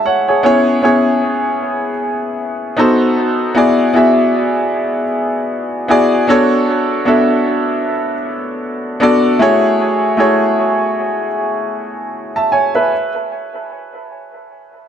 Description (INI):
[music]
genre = R&B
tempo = 77 BPM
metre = 4/4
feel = swing 58% on 16ths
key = F# minor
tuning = A4 = 440 Hz
[part]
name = clear baby grand piano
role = solo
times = 0.0-13.1 s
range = A3 to A5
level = -12 LUFS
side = equal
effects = dub echo
[sound]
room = light reverb, small room ambience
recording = echo-heavy mix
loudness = -12 LUFS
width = side -9 dB against mid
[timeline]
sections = 0.0-12.9 A section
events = none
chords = 0.4 C#m7; 2.8 B7b9; 3.6 E9; 6.3 Bm9; 9.4 F#m9